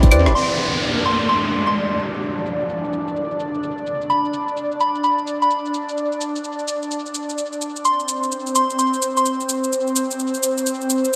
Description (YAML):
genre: UK garage, two-step garage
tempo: 128 BPM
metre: 4/4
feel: swing 63% on 16ths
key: unclear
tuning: A4 = 440 Hz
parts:
  - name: airy breathy pad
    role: sustained chords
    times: 0.1-11.2 s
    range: C4 to D5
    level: -26 LUFS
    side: equal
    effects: chorus, vintage 12-bit sampler grit
  - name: breakbeat sampler-style drum kit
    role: drums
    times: 0.0-11.2 s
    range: claves, hi-hat, rim click, shaker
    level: -27 LUFS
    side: equal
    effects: low-pass filter on hats, low-pass filter on snare, low-pass filter on perc, tape echo
  - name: soft synth bell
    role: melody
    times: 0.4-9.4 s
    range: Cb6 to C6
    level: -23 LUFS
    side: equal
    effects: chorus, tape echo
  - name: downlifter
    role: sound effects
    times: 0.4-4.1 s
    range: none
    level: -26 LUFS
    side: equal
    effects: none
room: wet echo chamber reverb, RT60 1.4 s, digital ambience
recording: echo-heavy mix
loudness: -21 LUFS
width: mono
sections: 0.4-11.2 A section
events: none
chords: none